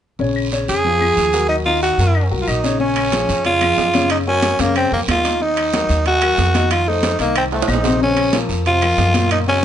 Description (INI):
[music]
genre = latin, salsa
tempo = 184 BPM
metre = 4/4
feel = straight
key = Bb minor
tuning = A4 = 440 Hz
[part]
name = warm upright piano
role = accompaniment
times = 0.2-9.6 s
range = Bb2 to Eb5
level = -21 LUFS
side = left 4 dB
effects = none
[part]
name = upright bass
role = bass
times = 0.2-9.6 s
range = Bb1 to Gb2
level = -21 LUFS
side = equal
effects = none
[part]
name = guiro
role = percussion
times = 0.2-9.6 s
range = none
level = -29 LUFS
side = right 4 dB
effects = none
[part]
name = claves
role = percussion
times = 0.4-9.5 s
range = none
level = -31 LUFS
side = left 8 dB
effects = none
[part]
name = growling tenor saxophone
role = melody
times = 0.7-9.6 s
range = A3 to Ab4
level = -17 LUFS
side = right 1 dB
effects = none
[part]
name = congas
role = percussion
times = 2.8-9.6 s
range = none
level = -25 LUFS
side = left 1 dB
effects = none
[part]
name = timbales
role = percussion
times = 3.0-9.5 s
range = none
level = -26 LUFS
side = right 7 dB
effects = none
[sound]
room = light reverb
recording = nothing above 10.6 kHz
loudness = -14 LUFS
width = side -10 dB against mid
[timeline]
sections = 0.2-2.8 A section; 2.8-9.6 B section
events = drum fill 7.5-8.0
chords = 0.2 Bbm7; 1.5 Ebm7; 2.8 Bbm7; 4.1 Gb; 5.4 Ebm; 6.7 F7; 8.0 Bbmadd9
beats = | 0.20 0.52 0.85 1.17 | 1.50 1.82 2.15 2.48 | 2.80 3.13 3.45 3.78 | 4.10 4.43 4.75 5.08 | 5.40 5.73 6.05 6.38 | 6.71 7.03 7.36 7.68 | 8.01 8.33 8.66 8.98 | 9.31 9.63